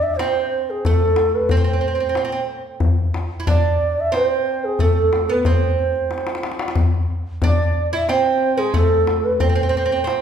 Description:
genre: Arabic maqam ensemble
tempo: 91 BPM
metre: 3/4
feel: straight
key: unclear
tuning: A4 = 442 Hz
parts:
  - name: mellow bass bansuri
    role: melody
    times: 0.0-10.2 s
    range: G#4 to E5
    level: -20 LUFS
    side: right 3 dB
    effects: none
  - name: oud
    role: second line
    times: 0.0-10.2 s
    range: G#3 to E4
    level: -24 LUFS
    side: right 3 dB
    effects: none
  - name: darbuka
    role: percussion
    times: 0.0-10.2 s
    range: none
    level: -19 LUFS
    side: left 2 dB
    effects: none
room: wet recital hall reverb, RT60 1.5 s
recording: recorded in a church or concert hall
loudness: -16 LUFS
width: side -8 dB against mid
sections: 0.0-10.2 A section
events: drum fill 6.1-6.8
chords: none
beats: 0.19 | 0.85 1.50 2.16 | 2.82 3.48 4.13 | 4.79 5.45 6.11 | 6.77 7.42 8.08 | 8.74 9.40 10.06

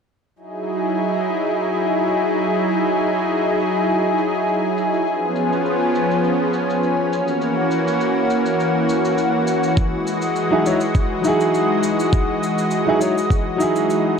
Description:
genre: sunset chillout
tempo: 102 BPM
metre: 4/4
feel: swing 54% on 16ths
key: E lydian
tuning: A4 = 441 Hz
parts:
  - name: lush unison pad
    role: sustained chords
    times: 0.4-14.2 s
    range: E3 to D#5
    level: -18 LUFS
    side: equal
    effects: chorus
  - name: cabasa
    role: drums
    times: 0.4-14.0 s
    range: none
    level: -37 LUFS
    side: left 2 dB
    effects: low-pass filter on perc, low-pass filter on room
  - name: electronic kick drum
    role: drums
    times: 9.8-13.4 s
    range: none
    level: -18 LUFS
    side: equal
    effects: overdrive
  - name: warm grand piano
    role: accompaniment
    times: 10.5-14.2 s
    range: F#3 to C#5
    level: -19 LUFS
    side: right 1 dB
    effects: auto-pan, ping-pong delay
room: moderate plate reverb, RT60 2.4 s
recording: dark, warm production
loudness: -17 LUFS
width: side -6 dB against mid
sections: 0.4-14.2 A section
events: none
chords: 0.4 Emaj9; 5.1 C#7; 7.1 F#7; 9.8 Emaj9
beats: | 0.36 0.95 1.54 2.13 | 2.71 3.30 3.89 4.48 | 5.07 5.66 6.25 6.83 | 7.42 8.01 8.60 9.19 | 9.77 10.36 10.95 11.54 | 12.13 12.71 13.30 13.89

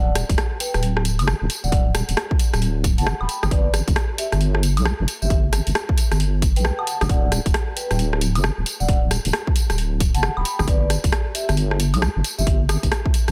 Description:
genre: UK garage, two-step garage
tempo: 134 BPM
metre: 4/4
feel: swing 63% on 16ths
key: D major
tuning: A4 = 440 Hz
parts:
  - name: vibraphone with medium mallets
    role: melody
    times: 0.0-12.5 s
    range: G4 to B5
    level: -32 LUFS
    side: equal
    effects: delay
  - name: deep soft wobble bass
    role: bass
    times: 0.0-13.3 s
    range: D1 to B1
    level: -23 LUFS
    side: equal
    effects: chorus, sidechain pumping
  - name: punchy analog drum machine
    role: drums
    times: 0.2-13.3 s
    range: hi-hat, rim click, tambourine, woodblock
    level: -27 LUFS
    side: equal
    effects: overdrive
  - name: electronic kick drum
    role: drums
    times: 0.3-13.1 s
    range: none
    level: -22 LUFS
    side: equal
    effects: overdrive
room: digital ambience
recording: dense, heavily limited modern master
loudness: -21 LUFS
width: mono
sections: 0.0-13.3 A section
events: none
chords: none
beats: 0.38 0.82 1.27 | 1.72 2.17 2.62 3.06 | 3.51 3.96 4.41 4.86 | 5.30 5.75 6.20 6.65 | 7.09 7.54 7.99 8.44 | 8.88 9.33 9.78 10.23 | 10.68 11.12 11.57 12.02 | 12.47 12.91

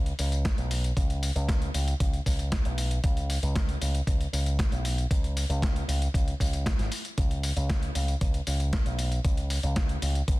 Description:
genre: nu-disco, nu disco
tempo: 116 BPM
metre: 4/4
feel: straight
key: unclear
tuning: A4 = 440 Hz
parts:
  - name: picked electric bass with an envelope filter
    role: bass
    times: 0.0-10.4 s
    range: G#1 to C#2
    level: -28 LUFS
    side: equal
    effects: none
  - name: dusty soul sampler-style drum kit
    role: drums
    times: 0.1-10.4 s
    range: hi-hat, snare drum, tambourine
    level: -34 LUFS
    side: left 1 dB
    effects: none
  - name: electronic kick drum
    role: drums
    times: 0.5-10.4 s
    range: none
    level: -27 LUFS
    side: equal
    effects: none
room: little or no reverb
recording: dense, heavily limited modern master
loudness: -25 LUFS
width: side -20 dB against mid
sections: 0.0-10.4 A section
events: none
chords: none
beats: 0.45 | 0.97 1.49 2.00 2.52 | 3.04 3.55 4.07 4.59 | 5.11 5.62 6.14 6.66 | 7.17 7.69 8.21 8.73 | 9.24 9.76 10.28

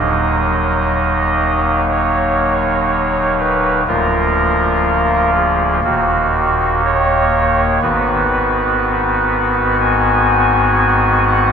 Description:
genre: classical, chorale-style piece for pipe organ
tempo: 61 BPM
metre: 4/4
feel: rubato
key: Eb minor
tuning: A4 = 439 Hz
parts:
  - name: pipe organ, soft reed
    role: solo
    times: 0.0-11.5 s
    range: D1 to Ab5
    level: -12 LUFS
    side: equal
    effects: none
room: wet church reverb, RT60 3.5 s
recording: minimal, uncompressed stereo recording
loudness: -12 LUFS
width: side -7 dB against mid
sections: 0.0-11.5 A section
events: none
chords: 0.0 Ebm; 3.9 Bb/D; 5.8 Ebm; 7.8 Abm7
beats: 0.92 1.92 2.90 | 3.88 4.86 5.84 6.85 | 7.83 8.80 9.81 10.79

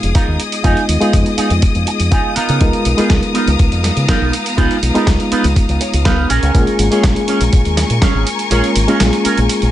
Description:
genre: nu-disco, nu disco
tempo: 122 BPM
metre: 4/4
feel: straight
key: unclear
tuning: A4 = 439 Hz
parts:
  - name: reed electric piano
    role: accompaniment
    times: 0.0-9.7 s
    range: Ab3 to Bb5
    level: -18 LUFS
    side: left 1 dB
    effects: fast tremolo, low-pass filter, ping-pong delay
  - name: clear symphonic string section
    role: sustained chords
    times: 0.0-9.7 s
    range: Cb4 to Eb6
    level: -22 LUFS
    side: left 4 dB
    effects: sidechain pumping
  - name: electric guitar with an envelope filter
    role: riff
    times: 0.0-9.5 s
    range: Cb4 to Ab5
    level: -20 LUFS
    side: right 4 dB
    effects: lush chorus, ping-pong delay
  - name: fingered electric bass with an envelope filter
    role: bass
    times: 0.0-9.7 s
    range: F1 to Db3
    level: -16 LUFS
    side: equal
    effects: none
  - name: dusty soul sampler-style drum kit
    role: drums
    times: 0.0-9.7 s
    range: hi-hat, snare drum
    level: -21 LUFS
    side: right 2 dB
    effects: studio reverb
  - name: electronic kick drum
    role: drums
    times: 0.2-8.1 s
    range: none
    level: -14 LUFS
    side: equal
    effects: studio reverb
room: digital ambience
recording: nothing above 10.3 kHz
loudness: -12 LUFS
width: side -13 dB against mid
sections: 0.0-9.7 A section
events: filter sweep on reed electric piano 0.0-9.7; clean electric guitar fill 5.6-6.5; kick drops out 8.5-9.7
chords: 0.0 Fm7b5; 2.4 Db13; 6.3 Bbm7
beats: 0.15 | 0.64 1.14 1.63 2.12 | 2.61 3.10 3.60 4.09 | 4.58 5.07 5.56 6.05 | 6.55 7.04 7.53 8.02 | 8.51 9.01 9.50

